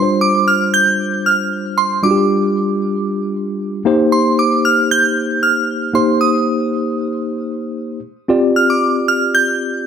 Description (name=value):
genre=funk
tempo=115 BPM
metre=4/4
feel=straight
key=C minor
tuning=A4 = 442 Hz
part: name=glassy synth bell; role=melody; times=0.0-9.9 s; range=C6 to G6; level=-16 LUFS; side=right 2 dB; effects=chorus
part: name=mellow tine electric piano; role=accompaniment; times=0.0-9.9 s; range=G3 to D5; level=-16 LUFS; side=left 1 dB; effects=medium stereo tremolo
room=light reverb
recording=none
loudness=-13 LUFS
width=side -7 dB against mid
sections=0.0-9.9 A section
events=none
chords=0.0 G7sus4; 3.9 Cm7; 8.3 G7sus4